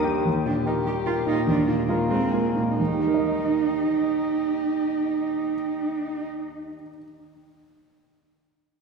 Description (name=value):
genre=quick classical-period movement for piano trio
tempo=126-149 BPM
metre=3/4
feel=rubato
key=Eb major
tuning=A4 = 441 Hz
part: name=clear concert grand piano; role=accompaniment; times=0.0-7.0 s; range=Eb2 to Eb5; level=-25 LUFS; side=equal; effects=none
part: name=rich violin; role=melody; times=0.3-6.3 s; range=F4 to Ab4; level=-40 LUFS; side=left 4 dB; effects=none
part: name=rich cello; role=second line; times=0.5-6.3 s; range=Ab3 to G4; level=-25 LUFS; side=right 4 dB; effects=none
room=wet church reverb, RT60 2.7 s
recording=minimal, uncompressed stereo recording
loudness=-22 LUFS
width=side -5 dB against mid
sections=0.3-2.8 A section; 2.8-5.5 B section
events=slowing down 0.0-2.8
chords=0.3 Eb; 1.5 Bb5/Eb; 2.8 Eb